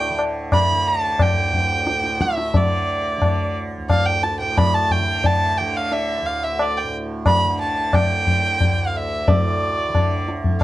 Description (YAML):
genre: indian classical, Hindustani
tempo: 89 BPM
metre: 5/4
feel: straight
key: D raga bhimpalasi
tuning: A4 = 439 Hz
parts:
  - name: rich violin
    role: melody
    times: 0.0-10.6 s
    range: D5 to B5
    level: -21 LUFS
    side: right 2 dB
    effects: none
  - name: tanpura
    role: drone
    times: 0.0-10.6 s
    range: D2 to D3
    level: -28 LUFS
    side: right 2 dB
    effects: none
  - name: tabla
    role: percussion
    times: 0.2-10.6 s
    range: none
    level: -19 LUFS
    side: left 1 dB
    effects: none
room: moderate studio reverb, RT60 0.6 s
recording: dark, warm production, nothing above 10.8 kHz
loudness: -17 LUFS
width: side -15 dB against mid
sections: 0.0-9.3 A section; 9.3-10.6 B section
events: none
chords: none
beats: 0.52 1.20 1.87 | 2.55 3.22 3.90 4.57 5.24 | 5.92 6.59 7.26 7.93 8.60 | 9.27 9.94 10.61